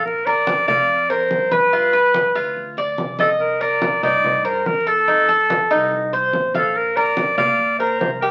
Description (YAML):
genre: latin, Cuban son and guajira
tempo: 143 BPM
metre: 4/4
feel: straight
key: Bb major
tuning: A4 = 436 Hz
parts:
  - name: bright clarinet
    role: melody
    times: 0.0-8.3 s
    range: A4 to D5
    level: -20 LUFS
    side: equal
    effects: none
  - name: Cuban tres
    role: arpeggios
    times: 0.0-8.3 s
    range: Eb4 to F5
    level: -23 LUFS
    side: equal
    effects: none
  - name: upright bass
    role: bass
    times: 0.0-8.3 s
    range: Bb1 to Bb2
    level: -38 LUFS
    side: equal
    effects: none
  - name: congas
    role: percussion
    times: 0.1-8.2 s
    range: none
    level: -30 LUFS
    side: equal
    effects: none
room: wet studio reverb, RT60 0.6 s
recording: very old 78 rpm record, vinyl crackle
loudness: -18 LUFS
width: mono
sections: 0.1-8.3 A section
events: none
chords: 0.1 Bb; 1.7 G7; 3.4 Cm7; 5.1 F7; 6.8 Bb